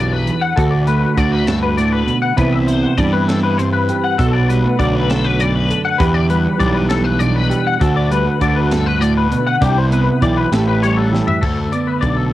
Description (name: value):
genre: math rock and midwest emo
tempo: 66 BPM (dotted quarters)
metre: 6/8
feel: straight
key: D mixolydian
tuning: A4 = 439 Hz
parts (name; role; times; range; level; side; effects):
- mellow electric guitar; accompaniment; 0.0-12.3 s; D2 to A4; -17 LUFS; right 3 dB; cassette tape
- twangy electric guitar; arpeggios; 0.0-12.3 s; G4 to F#5; -19 LUFS; left 6 dB; ensemble chorus, cassette tape, tape echo
- fuzz picked electric bass; bass; 0.0-12.3 s; A1 to G2; -18 LUFS; equal; overdrive
- crisp fusion drum kit; drums; 0.3-12.2 s; crash cymbal, hi-hat, kick drum, snare drum, toms; -23 LUFS; equal; cassette tape
room: little or no reverb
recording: home recording on cassette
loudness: -13 LUFS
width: side -14 dB against mid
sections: 0.0-11.4 A section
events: drum fill 11.1-11.4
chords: 0.0 Em7; 0.6 D; 2.4 Cmaj7; 4.2 Bm7; 6.0 Em7; 7.8 D; 9.6 Cmaj7; 10.5 A7; 11.4 D5